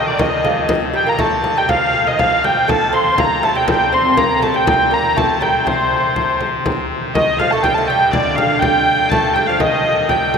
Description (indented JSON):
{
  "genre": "medieval dance",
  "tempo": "121 BPM",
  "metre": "2/4",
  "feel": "straight",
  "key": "C dorian",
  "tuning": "A4 = 440 Hz",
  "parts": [
    { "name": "dark hurdy-gurdy", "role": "melody", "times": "0.0-10.4 s", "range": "C5 to C6", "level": "-15 LUFS", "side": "equal", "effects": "none" },
    { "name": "lute", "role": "second line", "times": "0.0-10.4 s", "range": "C3 to C4", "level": "-21 LUFS", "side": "right 2 dB", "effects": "none" },
    { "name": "pipe organ, clarinet reed", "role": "drone", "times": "0.0-10.4 s", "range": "C3", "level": "-26 LUFS", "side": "left 3 dB", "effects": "none" },
    { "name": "frame drum", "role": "percussion", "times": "0.2-10.4 s", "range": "none", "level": "-21 LUFS", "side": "left 1 dB", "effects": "none" }
  ],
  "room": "wet cathedral reverb, RT60 6.3 s",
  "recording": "recorded in a church or concert hall",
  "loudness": "-13 LUFS",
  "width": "side -6 dB against mid",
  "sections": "0.0-6.7 A section; 6.7-10.4 B section",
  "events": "none",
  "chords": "none"
}